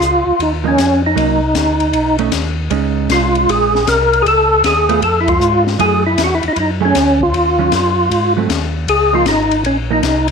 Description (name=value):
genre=soul jazz organ trio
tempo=156 BPM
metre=4/4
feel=swing 66% on 8ths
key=Db major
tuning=A4 = 440 Hz
part: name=percussive tonewheel organ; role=melody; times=0.0-10.3 s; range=Db4 to Bb4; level=-13 LUFS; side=equal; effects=slow rotary speaker, chorus vibrato
part: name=mellow tonewheel organ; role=bass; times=0.0-10.3 s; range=Ab1 to Ab2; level=-19 LUFS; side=equal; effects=slow rotary speaker
part: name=open jazz drum kit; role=drums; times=0.0-10.3 s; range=hi-hat, kick drum, ride cymbal, snare drum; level=-22 LUFS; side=left 8 dB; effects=none
part: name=hollow-body jazz guitar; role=accompaniment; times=0.6-10.0 s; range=Eb3 to Ab4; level=-20 LUFS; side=right 12 dB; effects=none
room=moderate plate reverb, RT60 1.3 s, small room reverb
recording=1960s-style stereo with parts hard left and right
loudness=-12 LUFS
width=side -6 dB against mid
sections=0.0-10.3 A section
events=band accent 5.2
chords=0.0 Dbadd9; 1.2 Cm7b5; 1.9 Cb9; 2.7 Bbm11; 4.3 Db(b13); 5.8 Gbm9; 7.3 Ebm9; 8.1 Ab7b9; 8.9 Db69